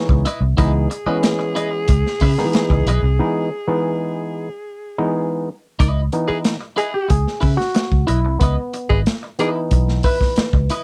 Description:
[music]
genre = funk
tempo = 92 BPM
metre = 4/4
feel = straight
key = C# minor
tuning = A4 = 440 Hz
[part]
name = growling tenor saxophone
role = second line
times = 0.0-9.5 s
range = G#4 to A#4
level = -27 LUFS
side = equal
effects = none
[part]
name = auto-wah clav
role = stabs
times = 0.0-10.8 s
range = D#3 to E5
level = -24 LUFS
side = equal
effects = overdrive
[part]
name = clean electric guitar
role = accompaniment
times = 0.1-10.8 s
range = E4 to E5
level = -29 LUFS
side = equal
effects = subtle chorus
[part]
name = vintage muted fingered electric bass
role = bass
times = 0.1-10.7 s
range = G#1 to C#3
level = -20 LUFS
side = equal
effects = none
[part]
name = crunchy breakbeat drum kit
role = drums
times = 0.1-10.8 s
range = hi-hat, kick drum, snare drum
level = -21 LUFS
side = equal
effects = none
[sound]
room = little or no reverb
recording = dry, close 1970s-style studio recording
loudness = -19 LUFS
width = mono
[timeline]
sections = 0.0-5.8 A section; 5.8-10.8 B section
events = clav fill 0.0-0.6; break 3.2-5.8; clav solo 5.8-10.8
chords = 0.0 C#m9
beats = | 0.58 1.23 1.89 2.54 | 3.19 3.85 4.50 5.15 | 5.80 6.46 7.11 7.76 | 8.42 9.07 9.72 10.38

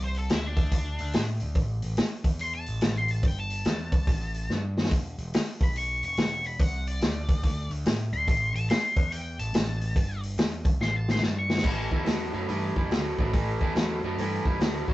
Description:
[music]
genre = blues rock power trio and southern rock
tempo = 143 BPM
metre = 4/4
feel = swing 64% on 8ths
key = unclear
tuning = A4 = 440 Hz
[part]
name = octave-fuzz lead guitar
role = melody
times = 0.0-11.7 s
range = D4 to C#6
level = -32 LUFS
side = left 2 dB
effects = wah, distortion
[part]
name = overdriven picked electric bass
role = bass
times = 0.0-14.9 s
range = E1 to A2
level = -31 LUFS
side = equal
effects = none
[part]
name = vintage drum kit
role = drums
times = 0.1-14.9 s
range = crash cymbal, hi-hat, kick drum, snare drum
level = -27 LUFS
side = equal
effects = none
[part]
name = overdriven electric guitar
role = riff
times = 11.6-14.9 s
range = A2 to F#3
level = -29 LUFS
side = right 1 dB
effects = none
[sound]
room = light reverb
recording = rough rehearsal-room recording, nothing above 7.9 kHz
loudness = -25 LUFS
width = side -17 dB against mid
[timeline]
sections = 0.0-11.6 A section; 11.6-14.9 B section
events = lead electric guitar solo 0.0-11.6; drum fill 4.5-4.9, 10.8-11.6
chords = 0.0 D5; 1.6 A7(no3); 4.9 E5; 6.6 D5; 8.3 Am7; 11.6 A5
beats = 0.30 0.72 1.14 | 1.56 1.98 2.40 2.82 | 3.24 3.66 4.08 4.50 | 4.92 5.34 5.76 6.18 | 6.60 7.02 7.44 7.86 | 8.28 8.70 9.12 9.54 | 9.96 10.38 10.80 11.23 | 11.65 12.07 12.49 12.92 | 13.34 13.77 14.19 14.62

